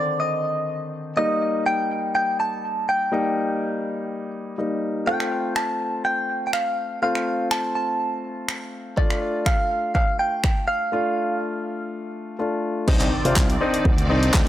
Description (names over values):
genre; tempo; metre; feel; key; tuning
dance-pop; 123 BPM; 4/4; straight; C dorian; A4 = 439 Hz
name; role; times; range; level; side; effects
direct-recorded clean electric guitar; melody; 0.0-12.1 s; D5 to A5; -24 LUFS; right 1 dB; lush chorus, tape echo
warm concert grand piano; accompaniment; 0.0-14.5 s; D3 to F4; -26 LUFS; left 2 dB; sidechain pumping
deep house drum kit; drums; 5.2-14.5 s; crash cymbal, finger snaps, handclaps, hi-hat, kick drum, snare drum; -22 LUFS; equal; none
filtered supersaw swell; sustained chords; 12.9-14.5 s; Eb3 to D5; -26 LUFS; right 1 dB; sidechain pumping
slap bass with an envelope filter; bass; 12.9-14.5 s; C2 to C3; -23 LUFS; equal; sidechain pumping
impact; sound effects; 13.0-14.5 s; none; -32 LUFS; right 1 dB; none
room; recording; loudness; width
light reverb, digital ambience; dry, gritty hardware recording; -21 LUFS; side -12 dB against mid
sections
0.0-12.9 A section; 12.9-14.5 B section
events
break 10.9-12.9; impact 12.9-14.5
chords
0.0 Cmadd9; 1.2 Eb; 5.1 F; 9.0 Dm; 12.9 Cmadd9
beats
0.20 0.68 | 1.17 1.66 2.15 2.63 | 3.12 3.61 4.10 4.58 | 5.07 5.56 6.05 6.54 | 7.02 7.51 8.00 8.49 | 8.97 9.46 9.95 10.44 | 10.93 11.41 11.90 12.39 | 12.88 13.37 13.85 14.34